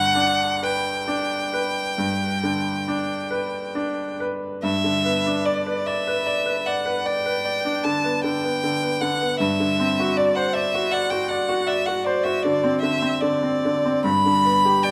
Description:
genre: classical, romantic duo for violin and grand piano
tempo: 43-54 BPM (dotted quarters)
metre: 12/8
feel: rubato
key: G major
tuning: A4 = 440 Hz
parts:
  - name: clear violin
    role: melody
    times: 0.0-14.9 s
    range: D5 to B5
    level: -25 LUFS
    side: equal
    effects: none
  - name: bright baby grand piano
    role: accompaniment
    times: 0.0-14.9 s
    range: G1 to D5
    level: -25 LUFS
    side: equal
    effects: none
room: moderate recital hall reverb, RT60 1.4 s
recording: close, detailed microphones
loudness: -22 LUFS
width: mono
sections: 0.0-4.6 A section; 4.6-14.9 A section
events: none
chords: 0.0 G; 9.4 D7/G; 14.0 G

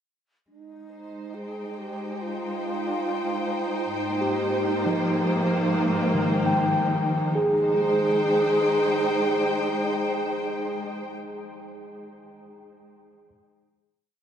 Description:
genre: ambient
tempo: 70 BPM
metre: 4/4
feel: straight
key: Ab major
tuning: A4 = 439 Hz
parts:
  - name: breathy mellow wooden-headed alto flute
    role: melody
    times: 0.5-10.7 s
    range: Eb4 to Ab4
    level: -28 LUFS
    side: right 2 dB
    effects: diffuse ambient delay
  - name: warm studio string section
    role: sustained chords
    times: 0.5-11.1 s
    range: Ab2 to G5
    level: -27 LUFS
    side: left 1 dB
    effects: none
  - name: organ-like drone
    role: drone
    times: 1.7-10.7 s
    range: Ab3 to Eb4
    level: -39 LUFS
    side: left 1 dB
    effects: none
  - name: overdriven tine electric piano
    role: arpeggios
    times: 4.2-13.3 s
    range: Eb3 to G5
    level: -26 LUFS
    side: equal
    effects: medium tremolo, diffuse ambient delay
room: wet cathedral reverb, RT60 5.5 s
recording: none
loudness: -22 LUFS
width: side -9 dB against mid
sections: 0.5-7.4 A section; 7.4-10.8 final chord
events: fade-in on string section 0.5-7.4; fade-in on tine electric piano 0.5-7.4; fade-in on alto flute 0.5-7.4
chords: 0.5 Abmaj7; 3.9 Cm7/Ab; 7.4 Abmaj7

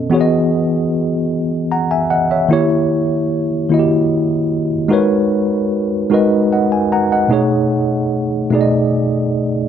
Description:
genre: R&B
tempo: 50 BPM (dotted quarters)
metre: 6/8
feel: straight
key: B major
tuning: A4 = 439 Hz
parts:
  - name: mellow tine electric piano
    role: solo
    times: 0.0-9.7 s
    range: B2 to A#5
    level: -13 LUFS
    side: equal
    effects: medium stereo tremolo
room: light reverb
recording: none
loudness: -13 LUFS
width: side -8 dB against mid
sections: 0.0-9.7 A section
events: none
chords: 0.1 Emaj9; 2.5 D#7b9; 4.9 G#m11; 7.3 B13

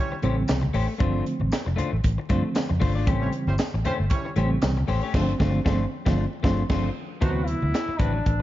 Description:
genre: funk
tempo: 116 BPM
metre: 4/4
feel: swing 56% on 16ths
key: unclear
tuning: A4 = 440 Hz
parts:
  - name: mellow horn section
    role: second line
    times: 0.0-7.3 s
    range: G3 to C#5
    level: -35 LUFS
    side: right 3 dB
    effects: none
  - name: electric guitar at the edge of break-up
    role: accompaniment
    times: 0.1-8.4 s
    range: F#3 to D5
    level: -31 LUFS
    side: left 6 dB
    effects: none
  - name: congas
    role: percussion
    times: 0.1-8.4 s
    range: none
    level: -34 LUFS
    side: right 1 dB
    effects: none
  - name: reed electric piano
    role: stabs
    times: 0.2-7.7 s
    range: C3 to B#3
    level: -28 LUFS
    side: right 2 dB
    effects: fast tremolo
  - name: vintage muted fingered electric bass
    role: bass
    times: 0.2-8.4 s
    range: F1 to G2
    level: -25 LUFS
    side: equal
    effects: none
  - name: crisp fusion drum kit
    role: drums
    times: 0.2-8.4 s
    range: crash cymbal, handclaps, hi-hat, kick drum, snare drum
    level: -26 LUFS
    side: equal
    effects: none
  - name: tambourine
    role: percussion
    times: 0.5-4.8 s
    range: none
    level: -47 LUFS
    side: left 4 dB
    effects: none
  - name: clear trombone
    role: melody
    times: 7.2-8.4 s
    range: D4 to F#4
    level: -28 LUFS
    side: left 1 dB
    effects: slapback echo
room: light reverb, studio ambience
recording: dark, warm production, vinyl crackle, nothing above 7.5 kHz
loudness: -22 LUFS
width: side -14 dB against mid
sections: 0.0-7.2 A section; 7.2-8.4 B section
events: band accent 5.1-7.2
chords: 0.0 A7#9; 1.0 G9sus4; 3.1 A7#9; 5.1 G9sus4; 7.2 D13

